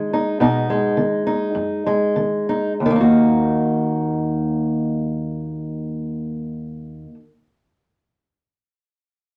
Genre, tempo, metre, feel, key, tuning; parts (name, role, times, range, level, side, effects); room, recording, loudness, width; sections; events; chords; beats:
folk; 46-56 BPM; 4/4; straight; Eb minor; A4 = 440 Hz
fingerpicked old ladder-braced acoustic guitar; accompaniment; 0.0-7.2 s; Eb2 to Gb4; -21 LUFS; equal
wet club ambience, RT60 0.5 s; -20 LUFS; mono
0.0-2.8 A section; 2.8-8.0 B section
slowing down 0.0-2.8
0.0 B6; 2.8 Ebm
0.39 1.54 | 2.79 4.09 5.39 6.69